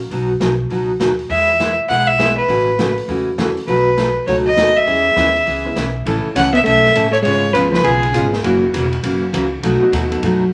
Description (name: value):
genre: country, western swing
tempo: 202 BPM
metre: 4/4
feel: swing 63% on 8ths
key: E major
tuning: A4 = 440 Hz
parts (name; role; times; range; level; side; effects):
- upright bass; bass; 0.0-10.5 s; E1 to F#2; -25 LUFS; equal; none
- swinging big-band drum kit; drums; 0.0-10.3 s; hi-hat, ride cymbal, snare drum; -29 LUFS; equal; none
- picked steel-string acoustic guitar; accompaniment; 0.1-10.4 s; B2 to A4; -21 LUFS; equal; none
- rich fiddle; melody; 1.3-8.1 s; G#4 to F#5; -17 LUFS; equal; none
- clear upright piano; accompaniment; 2.2-10.2 s; E3 to B4; -26 LUFS; equal; none
- hollow-body jazz guitar; second line; 6.4-8.1 s; C#3 to C#4; -21 LUFS; equal; none
room: moderate large studio reverb, RT60 1.2 s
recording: none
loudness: -16 LUFS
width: mono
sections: 0.0-6.1 A section; 6.1-10.5 B section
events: none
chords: 0.1 B; 1.3 E; 2.5 A6; 3.7 B7; 4.9 E6; 6.1 A; 7.3 C#7/G#; 8.4 F#7; 9.6 B7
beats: | 0.10 0.40 0.70 1.00 | 1.30 1.59 1.89 2.19 | 2.49 2.78 3.08 3.38 | 3.68 3.98 4.27 4.57 | 4.87 5.17 5.46 5.76 | 6.06 6.36 6.66 6.95 | 7.25 7.55 7.85 8.14 | 8.44 8.74 9.04 9.34 | 9.63 9.93 10.23